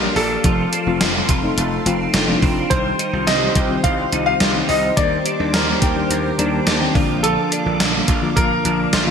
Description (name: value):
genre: 1980s-style pop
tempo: 106 BPM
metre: 4/4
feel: straight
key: C dorian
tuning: A4 = 440 Hz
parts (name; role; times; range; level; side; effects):
- clear concert grand piano; melody; 0.0-9.1 s; A4 to F5; -22 LUFS; equal; wide subtle chorus
- mellow FM electric piano; accompaniment; 0.0-9.1 s; D3 to Bb5; -23 LUFS; left 4 dB; chorus
- phased analog pad; sustained chords; 0.0-9.1 s; Bb3 to D6; -27 LUFS; right 1 dB; phaser, chorus
- twelve-string electric guitar; riff; 0.0-9.1 s; F3 to G4; -25 LUFS; right 4 dB; ensemble chorus, digital delay
- gritty slap bass; bass; 0.0-9.1 s; F1 to Eb2; -24 LUFS; equal; overdrive
- gated 80s digital drum machine; drums; 0.2-9.1 s; hi-hat, kick drum, snare drum; -19 LUFS; equal; gated reverb, gated reverb snare
room: wet lush hall reverb, RT60 2.6 s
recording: bright 1980s-style digital production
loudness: -15 LUFS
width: side -7 dB against mid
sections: 0.0-9.1 A section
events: FM electric piano fill 6.1-7.2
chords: 0.4 F; 2.7 Cm; 5.0 Ebmaj7; 7.0 Bb